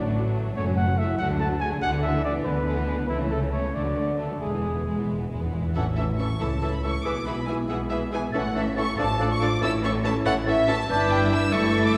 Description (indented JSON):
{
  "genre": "quick classical-period movement for symphony orchestra",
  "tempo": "94 BPM (dotted quarters)",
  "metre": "6/8",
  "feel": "straight",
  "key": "A major",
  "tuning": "A4 = 440 Hz",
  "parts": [
    { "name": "rich chamber violin section", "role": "melody", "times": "0.0-11.9 s", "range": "B3 to E6", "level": "-33 LUFS", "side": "equal", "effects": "none" },
    { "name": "rich chamber violin section", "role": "second line", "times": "0.0-12.0 s", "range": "G#3 to E5", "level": "-39 LUFS", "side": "equal", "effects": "none" },
    { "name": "rich chamber viola section", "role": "accompaniment", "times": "0.0-12.0 s", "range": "D3 to F4", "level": "-34 LUFS", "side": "equal", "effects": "none" },
    { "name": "mellow French horn section", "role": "sustained chords", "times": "0.0-12.0 s", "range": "E3 to A4", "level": "-35 LUFS", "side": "equal", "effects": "none" },
    { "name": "dark trumpet", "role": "stabs", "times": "0.0-5.1 s", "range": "E4 to A5", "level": "-32 LUFS", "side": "equal", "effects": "none" },
    { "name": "rich chamber double bass section", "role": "bass", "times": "0.0-12.0 s", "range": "E1 to D2", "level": "-32 LUFS", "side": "equal", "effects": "none" },
    { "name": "warm chamber cello section", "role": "bass", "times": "0.0-12.0 s", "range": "E2 to D3", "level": "-33 LUFS", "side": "equal", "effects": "none" },
    { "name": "timpani", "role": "percussion", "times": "4.4-6.4 s", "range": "E2 to A2", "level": "-33 LUFS", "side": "equal", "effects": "none" },
    { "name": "dark cor anglais", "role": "second line", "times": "5.8-12.0 s", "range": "A4 to E5", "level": "-37 LUFS", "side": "equal", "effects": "none" },
    { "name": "silver concert flute", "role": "second line", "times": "5.8-12.0 s", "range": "E6 to A6", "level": "-36 LUFS", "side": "equal", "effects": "none" },
    { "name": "warm clarinet", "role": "second line", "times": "5.8-12.0 s", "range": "C#4 to B4", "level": "-36 LUFS", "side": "equal", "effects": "none" },
    { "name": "warm bassoon", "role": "accompaniment", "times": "5.8-12.0 s", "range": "E3 to F3", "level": "-37 LUFS", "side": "equal", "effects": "none" }
  ],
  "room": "wet scoring stage reverb, RT60 1.7 s",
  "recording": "heard from further back in the room",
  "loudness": "-25 LUFS",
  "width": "mono",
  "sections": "0.0-5.8 A section; 5.8-12.0 B section",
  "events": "timpani fill 4.4-5.8",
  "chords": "0.0 D; 0.6 F#m; 1.2 D; 1.8 E7/D; 3.1 A/C#; 3.7 Bm7/D; 4.4 E; 5.8 A; 6.4 A/C#; 7.0 E/B; 8.3 A; 9.0 Dm/A; 9.6 A; 10.9 Em7/G"
}